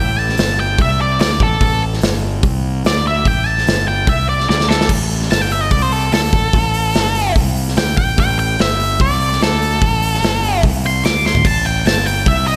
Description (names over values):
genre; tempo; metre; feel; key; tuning
blues rock power trio and southern rock; 146 BPM; 4/4; straight; A minor; A4 = 439 Hz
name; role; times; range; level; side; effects
octave-fuzz lead guitar; melody; 0.0-12.6 s; A4 to D6; -20 LUFS; equal; distortion, slapback echo
fuzz fingered electric bass; bass; 0.0-12.6 s; G1 to D2; -21 LUFS; equal; overdrive
big rock drum kit; drums; 0.3-12.6 s; crash cymbal, hi-hat, kick drum, snare drum, toms; -20 LUFS; equal; none
room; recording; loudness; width
moderate recital hall reverb, RT60 1.7 s, studio reverb; big arena sound; -15 LUFS; mono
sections
0.0-4.9 A section; 4.9-12.6 A section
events
lead electric guitar solo 0.0-4.9, 4.9-12.6; drum fill 4.5-4.9, 11.2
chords
0.0 Am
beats
0.38 0.79 1.20 | 1.61 2.02 2.43 2.85 | 3.26 3.67 4.08 4.49 | 4.90 5.31 5.72 6.13 | 6.54 6.95 7.36 7.77 | 8.18 8.59 9.00 9.41 | 9.82 10.22 10.63 11.04 | 11.45 11.86 12.26